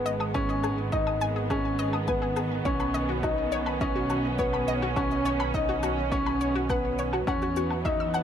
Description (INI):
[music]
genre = piano and strings electronica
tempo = 104 BPM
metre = 4/4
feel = straight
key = unclear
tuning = A4 = 441 Hz
[part]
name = dark symphonic string section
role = sustained chords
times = 0.0-8.2 s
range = D#3 to C#4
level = -32 LUFS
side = right 4 dB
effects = sidechain pumping
[part]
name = warm baby grand piano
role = riff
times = 0.0-8.2 s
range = B3 to D#4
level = -28 LUFS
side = left 2 dB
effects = ping-pong delay
[part]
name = dark studio double bass section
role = bass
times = 0.0-8.2 s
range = G#1 to E2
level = -33 LUFS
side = right 1 dB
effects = sidechain pumping
[part]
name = analog pluck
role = arpeggios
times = 0.1-8.2 s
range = F#4 to E6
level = -33 LUFS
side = left 2 dB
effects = chorus, sidechain pumping, ping-pong delay
[part]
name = shaker and woodblock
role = drums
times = 0.1-8.2 s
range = none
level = -38 LUFS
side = left 5 dB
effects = none
[part]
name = electronic kick drum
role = drums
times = 0.3-8.0 s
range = none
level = -33 LUFS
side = right 1 dB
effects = none
[sound]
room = light reverb, small room reverb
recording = none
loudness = -25 LUFS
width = side -9 dB against mid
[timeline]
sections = 0.0-8.2 A section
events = none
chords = 0.0 G#m; 2.7 Badd9; 7.3 Esus2